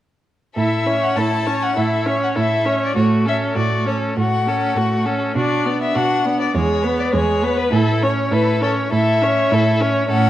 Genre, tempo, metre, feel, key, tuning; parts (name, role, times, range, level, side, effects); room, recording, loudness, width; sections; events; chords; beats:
quick classical-period movement for string quartet; 101 BPM; 4/4; rubato; A major; A4 = 440 Hz
rich violin; melody; 0.6-10.3 s; A4 to A5; -21 LUFS; left 4 dB
rich violin; second line; 0.6-10.3 s; D4 to C#5; -24 LUFS; left 1 dB
clear viola; accompaniment; 0.6-10.3 s; G#3 to E4; -21 LUFS; right 1 dB
rich cello; bass; 0.6-10.3 s; E2 to B2; -21 LUFS; right 3 dB
moderate recital hall reverb, RT60 1.5 s; worn, warbling old tape, cassette tape, warbly pitch drift; -16 LUFS; side -13 dB against mid
0.6-10.3 A section
0.6 A; 3.0 F#m/A; 5.4 Bm; 6.5 E; 7.7 A
| 0.56 1.17 1.77 2.36 | 2.96 3.56 4.17 4.76 | 5.35 5.95 6.55 7.13 | 7.72 8.31 8.92 9.52 | 10.10